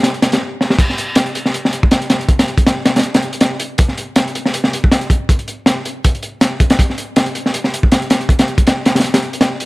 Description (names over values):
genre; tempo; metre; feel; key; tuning
drum and bass; 160 BPM; 4/4; swing 54% on 16ths; none; none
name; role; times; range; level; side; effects
crunchy breakbeat drum kit; drums; 0.0-9.7 s; crash cymbal, hi-hat, kick drum, snare drum; -12 LUFS; equal; none
room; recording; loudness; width
little or no reverb; vinyl crackle; -13 LUFS; side -22 dB against mid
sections
0.8-9.7 A section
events
stop 0.4-0.8; drum fill 0.6; drop 0.8-9.7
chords
none